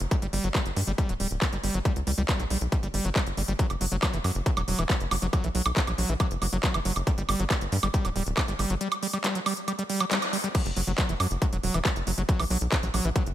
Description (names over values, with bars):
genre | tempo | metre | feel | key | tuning
psychedelic trance | 138 BPM | 4/4 | straight | unclear | A4 = 438 Hz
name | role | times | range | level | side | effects
tight sequencer bass | bass | 0.0-13.3 s | D1 to G2 | -29 LUFS | equal | none
techno drum kit | drums | 0.0-13.3 s | crash cymbal, handclaps, hi-hat, woodblock | -30 LUFS | right 1 dB | overdrive, studio reverb
screaming distorted acid line | riff | 0.1-13.2 s | E3 to G3 | -31 LUFS | right 1 dB | distortion, chorus, auto-pan, cassette tape, sidechain pumping, tape echo
electronic kick drum | drums | 0.1-13.2 s | none | -26 LUFS | equal | distortion, overdrive, studio reverb
room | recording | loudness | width
light reverb, digital ambience | none | -24 LUFS | side -12 dB against mid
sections
0.0-10.5 A section; 10.5-13.3 B section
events
band accent 10.1; drop 10.5-13.3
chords
0.1 G5; 3.6 N.C.; 7.1 G5; 10.5 Esus2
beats
| 0.11 0.55 0.98 1.42 | 1.85 2.29 2.72 3.16 | 3.59 4.03 4.46 4.90 | 5.33 5.76 6.20 6.63 | 7.07 7.50 7.94 8.37 | 8.81 9.24 9.68 10.11 | 10.55 10.98 11.42 11.85 | 12.29 12.72 13.16